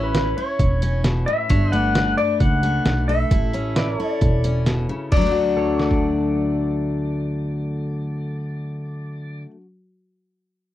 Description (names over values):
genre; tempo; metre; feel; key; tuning
honky-tonk and classic country; 133 BPM; 4/4; straight; D major; A4 = 440 Hz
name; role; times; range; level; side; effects
pedal steel guitar; melody; 0.0-9.4 s; B4 to F#5; -24 LUFS; left 3 dB; none
picked steel-string acoustic guitar; accompaniment; 0.0-9.7 s; G2 to A4; -24 LUFS; left 2 dB; none
pedal steel guitar; sustained chords; 0.0-9.5 s; A4 to E5; -32 LUFS; right 3 dB; wide subtle chorus
upright bass; bass; 0.0-9.4 s; E1 to D2; -24 LUFS; right 1 dB; none
trip hop sampler-style drum kit; drums; 0.1-6.0 s; crash cymbal, hi-hat, kick drum, snare drum; -21 LUFS; right 1 dB; none
room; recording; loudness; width
little or no reverb; dry, close 1970s-style studio recording; -18 LUFS; side -13 dB against mid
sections
0.0-5.1 A section; 5.1-8.7 B section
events
none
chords
0.0 A; 1.5 Gadd9; 3.3 A; 5.1 D